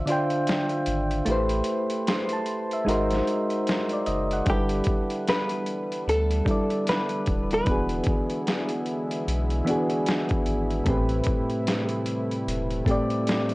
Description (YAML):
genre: lo-fi hip hop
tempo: 75 BPM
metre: 4/4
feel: swing 61% on 16ths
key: A dorian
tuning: A4 = 440 Hz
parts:
  - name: soft electric-piano-like synth keys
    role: accompaniment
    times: 0.0-13.5 s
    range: A2 to C6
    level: -25 LUFS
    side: equal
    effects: chorus, cassette tape
  - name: boom bap sampler-style drum kit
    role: drums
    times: 0.1-13.5 s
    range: hi-hat, kick drum, snare drum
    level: -28 LUFS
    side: equal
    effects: overdrive, vintage 12-bit sampler grit
  - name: warm sub bass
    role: bass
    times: 0.9-12.8 s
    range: D#1 to D2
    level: -28 LUFS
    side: equal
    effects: none
  - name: hollow-body jazz guitar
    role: melody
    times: 4.5-9.9 s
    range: G4 to B4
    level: -28 LUFS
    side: equal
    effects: none
  - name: warm analog pad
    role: sustained chords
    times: 4.5-13.5 s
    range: C3 to E4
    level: -34 LUFS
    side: equal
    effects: chorus
room: moderate small room reverb, RT60 0.5 s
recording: worn, warbling old tape, cassette tape, warbly pitch drift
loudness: -23 LUFS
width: side -21 dB against mid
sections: 0.0-13.5 A section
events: break 0.0-4.5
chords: 0.0 Dm9; 1.3 Am7; 2.9 G#9; 4.5 G6; 7.7 E7; 10.9 Am7